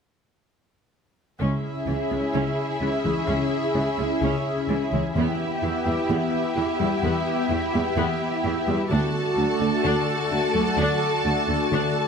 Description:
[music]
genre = cinematic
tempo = 128 BPM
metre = 4/4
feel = straight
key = C# phrygian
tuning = A4 = 439 Hz
[part]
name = rich symphonic violin section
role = second line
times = 1.4-12.1 s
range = G4 to A5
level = -28 LUFS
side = left 2 dB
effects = none
[part]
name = rich studio viola section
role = accompaniment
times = 1.4-12.1 s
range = E3 to F#4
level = -29 LUFS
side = right 2 dB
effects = none
[part]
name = phased analog pad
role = sustained chords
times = 1.4-12.1 s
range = A3 to E5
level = -27 LUFS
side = equal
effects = phaser, chorus
[part]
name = thumb-piano-like synth pluck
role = arpeggios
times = 1.4-11.9 s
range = C#3 to E4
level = -29 LUFS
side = left 4 dB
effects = chorus, ping-pong delay
[part]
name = rich symphonic cello section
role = bass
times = 1.4-11.8 s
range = C#2 to E2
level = -28 LUFS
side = right 3 dB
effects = none
[sound]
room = moderate scoring stage reverb, RT60 1.7 s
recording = close, detailed microphones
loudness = -21 LUFS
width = side -6 dB against mid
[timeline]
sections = 1.4-12.1 A section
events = build-up 1.4-12.1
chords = 1.4 C#m; 5.2 Em; 8.9 D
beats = | 1.42 1.88 2.35 2.82 | 3.29 3.76 4.23 4.70 | 5.17 5.63 6.10 6.57 | 7.04 7.51 7.98 8.45 | 8.92 9.38 9.85 10.32 | 10.79 11.26 11.73

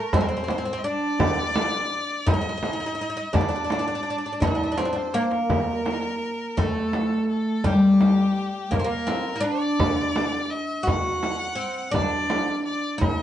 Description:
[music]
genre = Persian modal ensemble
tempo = 56 BPM (dotted quarters)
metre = 6/8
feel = straight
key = D dastgah homayun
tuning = A4 = 440 Hz
[part]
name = oud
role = melody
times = 0.0-13.2 s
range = G3 to F#4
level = -24 LUFS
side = equal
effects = none
[part]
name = clear violin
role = second line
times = 0.0-13.2 s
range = G4 to F#5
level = -29 LUFS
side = left 2 dB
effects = none
[part]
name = frame drum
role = percussion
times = 0.1-13.2 s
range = none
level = -27 LUFS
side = right 2 dB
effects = none
[part]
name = tombak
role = percussion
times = 0.1-13.2 s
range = none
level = -27 LUFS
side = left 2 dB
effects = none
[sound]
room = moderate studio ambience, RT60 0.5 s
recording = band playing live in one room, nothing above 10.3 kHz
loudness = -22 LUFS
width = side -11 dB against mid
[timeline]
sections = 0.0-5.5 A section; 5.5-13.2 B section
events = drum fill 4.8-5.5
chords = none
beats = 0.13 | 1.20 2.28 | 3.35 4.42 | 5.50 6.58 | 7.65 8.72 | 9.80 10.87 | 11.95 13.02

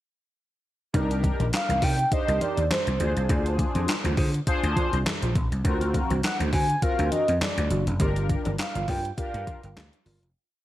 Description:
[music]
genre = early-eighties boogie funk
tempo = 102 BPM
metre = 4/4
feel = swing 56% on 16ths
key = C minor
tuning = A4 = 441 Hz
[part]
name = mellow synth brass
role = accompaniment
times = 0.9-9.7 s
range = C4 to C5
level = -30 LUFS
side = left 2 dB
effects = chorus, phaser
[part]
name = mellow electric guitar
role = riff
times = 0.9-10.3 s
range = D4 to F5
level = -34 LUFS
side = right 3 dB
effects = analog chorus
[part]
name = vintage slap bass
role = bass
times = 0.9-10.3 s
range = E#1 to D3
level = -26 LUFS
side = equal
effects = none
[part]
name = clean 12-bit digital drum machine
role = drums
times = 0.9-10.3 s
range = handclaps, hi-hat, kick drum, snare drum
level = -28 LUFS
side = equal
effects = overdrive, gated reverb
[part]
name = congas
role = percussion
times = 0.9-10.2 s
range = none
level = -34 LUFS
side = left 2 dB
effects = none
[part]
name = mellow horn-like synth lead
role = melody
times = 1.5-10.0 s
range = C5 to Ab5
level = -28 LUFS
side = equal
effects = chorus, tape echo
[sound]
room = light reverb, digital ambience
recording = none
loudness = -22 LUFS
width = side -14 dB against mid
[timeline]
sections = 0.9-10.4 verse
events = fade-out 8.0-10.4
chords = 0.9 Cm9; 3.0 Dm7b5; 5.6 D7alt; 8.0 Gm7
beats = | 0.94 1.53 2.12 2.71 | 3.30 3.88 4.47 5.06 | 5.65 6.24 6.83 7.41 | 8.00 8.59 9.18 9.77

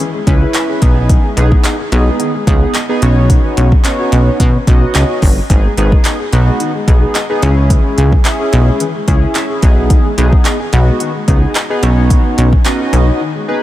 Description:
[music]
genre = dance-pop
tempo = 109 BPM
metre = 4/4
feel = straight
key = G# minor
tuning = A4 = 438 Hz
[part]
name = chorused polysynth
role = accompaniment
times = 0.0-13.6 s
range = B3 to D#5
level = -17 LUFS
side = right 1 dB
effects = sidechain pumping
[part]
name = felt-muted upright piano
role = arpeggios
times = 0.0-13.6 s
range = D#3 to E5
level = -23 LUFS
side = left 4 dB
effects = sidechain pumping, diffuse ambient delay
[part]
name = deep house drum kit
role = drums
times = 0.0-13.1 s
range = handclaps, hi-hat, kick drum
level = -13 LUFS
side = equal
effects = none
[part]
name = plucky analog bass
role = bass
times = 0.3-13.1 s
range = G1 to B2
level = -11 LUFS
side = equal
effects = sidechain pumping
[part]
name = group handclap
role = percussion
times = 0.5-12.8 s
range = none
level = -30 LUFS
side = right 7 dB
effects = none
[sound]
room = light reverb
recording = none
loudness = -9 LUFS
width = side -14 dB against mid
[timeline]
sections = 0.0-13.6 A section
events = break 13.2-13.6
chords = 0.0 C#m; 0.8 G#m/B; 3.0 Badd9; 5.5 G#m; 7.4 C#m; 9.6 G#m/B; 11.8 Badd9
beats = 0.55 | 1.09 1.65 2.20 2.75 | 3.30 3.85 4.40 4.95 | 5.50 6.05 6.60 7.15 | 7.70 8.25 8.80 9.35 | 9.90 10.45 11.00 11.55 | 12.10 12.65 13.21

